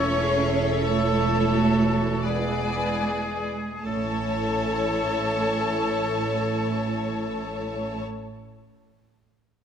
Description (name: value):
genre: classical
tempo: 36-50 BPM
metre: 3/4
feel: rubato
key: A major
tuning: A4 = 443 Hz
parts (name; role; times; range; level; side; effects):
- warm symphonic violin section; melody; 0.0-8.0 s; C#5 to D5; -32 LUFS; left 3 dB; none
- bright clarinet; second line; 0.0-8.0 s; F#4 to C#5; -35 LUFS; left 2 dB; none
- bright concert flute; second line; 0.0-8.0 s; G#5 to C#6; -34 LUFS; left 2 dB; none
- rich chamber violin section; second line; 0.0-8.0 s; G#4 to A5; -34 LUFS; left 4 dB; none
- warm oboe; second line; 0.0-8.0 s; G#4 to C#5; -34 LUFS; right 1 dB; none
- warm symphonic viola section; accompaniment; 0.0-8.0 s; E4 to B4; -33 LUFS; right 1 dB; none
- bright trombone section; sustained chords; 0.0-8.0 s; E3 to C#4; -35 LUFS; right 3 dB; none
- dark French horn section; sustained chords; 0.0-8.0 s; E4 to D5; -32 LUFS; left 3 dB; none
- rich symphonic cello section; bass; 0.0-8.0 s; G#3 to C#4; -28 LUFS; right 3 dB; none
- warm symphonic double bass section; bass; 0.0-8.0 s; E1 to A1; -31 LUFS; right 4 dB; none
room: moderate scoring stage reverb, RT60 1.8 s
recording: none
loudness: -22 LUFS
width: side -8 dB against mid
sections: 0.0-3.8 A section; 3.8-8.7 B section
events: slowing down 0.0-3.8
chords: 0.0 A/E; 2.2 E7; 3.8 A